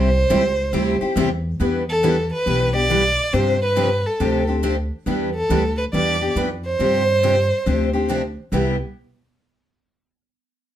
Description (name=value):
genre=acoustic string swing (jazz manouche)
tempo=139 BPM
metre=4/4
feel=swing 65% on 8ths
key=C major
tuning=A4 = 441 Hz
part: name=warm violin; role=melody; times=0.0-8.1 s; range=A4 to D5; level=-20 LUFS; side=right 1 dB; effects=none
part: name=picked steel-string acoustic guitar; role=accompaniment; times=0.0-8.8 s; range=C3 to G4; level=-22 LUFS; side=left 5 dB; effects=none
part: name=picked steel-string acoustic guitar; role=accompaniment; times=0.0-8.8 s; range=C3 to B4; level=-26 LUFS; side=right 8 dB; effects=none
part: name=upright bass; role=bass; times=0.0-8.8 s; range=B1 to G2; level=-23 LUFS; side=equal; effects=none
room=moderate studio reverb, RT60 0.6 s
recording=none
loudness=-17 LUFS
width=side -11 dB against mid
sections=0.0-1.6 A section; 1.6-8.5 B section; 8.5-10.3 C section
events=none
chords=0.0 C; 1.6 Em7; 3.3 G9sus4; 5.1 Em7; 6.8 G7sus4; 8.5 Cmaj7